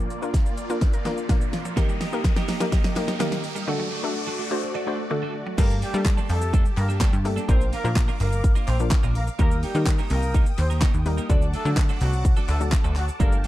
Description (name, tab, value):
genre	dance-pop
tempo	126 BPM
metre	4/4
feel	straight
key	G minor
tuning	A4 = 440 Hz
part	hollow square pluck	accompaniment	0.0-13.4 s	F3 to C5	-30 LUFS	left 4 dB	chorus, sidechain pumping
part	filtered supersaw swell	sustained chords	0.0-13.5 s	A3 to Eb6	-35 LUFS	equal	phaser, sidechain pumping
part	mallet-like synth pluck	arpeggios	0.0-5.6 s	Bb2 to Eb5	-35 LUFS	right 5 dB	chorus, sidechain pumping, slapback echo
part	riser	sound effects	0.0-4.6 s	none	-36 LUFS	equal	none
part	pop drum kit	drums	0.1-13.5 s	crash cymbal, handclaps, hi-hat, kick drum, shaker, snare drum	-22 LUFS	equal	none
part	twelve-string electric guitar	riff	1.8-13.5 s	G3 to Bb4	-34 LUFS	right 8 dB	wide subtle chorus
part	group handclap	percussion	2.2-12.8 s	none	-42 LUFS	left 12 dB	none
part	warm horn section	melody	5.6-13.5 s	F#3 to D5	-32 LUFS	left 1 dB	sidechain pumping, slapback echo
part	plucky analog bass	bass	5.6-13.5 s	G1 to G3	-24 LUFS	equal	sidechain pumping
room	digital ambience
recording	dark, warm production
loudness	-20 LUFS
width	side -15 dB against mid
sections	0.0-5.6 A section; 5.6-13.5 B section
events	build-up 0.0-5.6; drum fill 0.0-3.7; riser 0.0-5.6; break 3.7-5.6; drop 5.6-13.5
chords	0.0 Bb; 1.8 Eb; 3.7 D; 5.6 Gmadd9; 7.5 Bb; 9.4 Eb; 11.3 D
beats	0.34 0.82 1.30 | 1.77 2.25 2.72 3.20 | 3.68 4.15 4.63 5.11 | 5.58 6.06 6.53 7.01 | 7.49 7.96 8.44 8.91 | 9.39 9.87 10.34 10.82 | 11.30 11.77 12.25 12.72 | 13.20